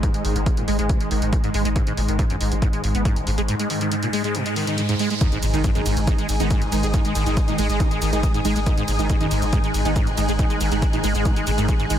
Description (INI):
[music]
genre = driving peak-time techno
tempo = 139 BPM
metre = 4/4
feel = straight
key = unclear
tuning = A4 = 439 Hz
[part]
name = acid bass, saw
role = riff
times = 0.0-12.0 s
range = G#1 to B3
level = -26 LUFS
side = equal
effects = ensemble chorus, sidechain pumping, digital delay
[part]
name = saturated sub bass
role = bass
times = 0.0-12.0 s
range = G#1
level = -25 LUFS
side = equal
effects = tube saturation, sidechain pumping, low-pass filter
[part]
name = swarming drone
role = drone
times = 0.0-12.0 s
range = G#2 to G#3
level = -28 LUFS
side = equal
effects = built-in reverb, sidechain pumping
[part]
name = electronic kick drum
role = drums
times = 0.0-11.8 s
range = none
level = -22 LUFS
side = equal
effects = none
[part]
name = punchy analog drum machine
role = drums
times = 0.0-12.0 s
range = hi-hat, ride cymbal, shaker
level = -32 LUFS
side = right 1 dB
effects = sidechain pumping on hats, sidechain pumping on cymbals, sidechain pumping on perc
[part]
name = riser and impact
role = sound effects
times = 2.8-6.9 s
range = none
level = -32 LUFS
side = equal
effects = none
[part]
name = rave stab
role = stabs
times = 5.2-12.0 s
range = D#3 to D#4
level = -27 LUFS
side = right 2 dB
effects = chorus, built-in reverb, sidechain pumping, digital delay
[part]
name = muted studio string section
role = texture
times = 5.2-12.0 s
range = D#4 to F#6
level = -29 LUFS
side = left 2 dB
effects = sidechain pumping
[sound]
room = digital ambience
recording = dense, heavily limited modern master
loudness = -19 LUFS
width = side -10 dB against mid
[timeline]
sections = 0.0-5.2 A section; 5.2-12.0 B section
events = filter sweep on acid bass 0.0-5.2; riser 2.8-5.2; drop 5.2-12.0; impact 5.2-6.9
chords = 0.0 G#5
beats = | 0.03 0.46 0.89 1.33 | 1.76 2.19 2.62 3.05 | 3.48 3.92 4.35 4.78 | 5.21 5.64 6.07 6.51 | 6.94 7.37 7.80 8.23 | 8.66 9.10 9.53 9.96 | 10.39 10.82 11.25 11.69